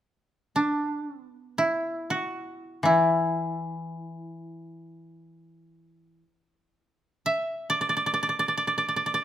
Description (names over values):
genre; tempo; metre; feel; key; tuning
japanese traditional, Japanese chamber music; free time; none; none; unclear; A4 = 441 Hz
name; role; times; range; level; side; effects
koto; melody; 0.6-9.2 s; D4 to E5; -25 LUFS; right 2 dB; none
koto; accompaniment; 2.8-6.2 s; E3; -26 LUFS; left 3 dB; none
room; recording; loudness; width
light reverb; close, detailed microphones; -24 LUFS; side -11 dB against mid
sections
0.0-9.2 A section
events
none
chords
none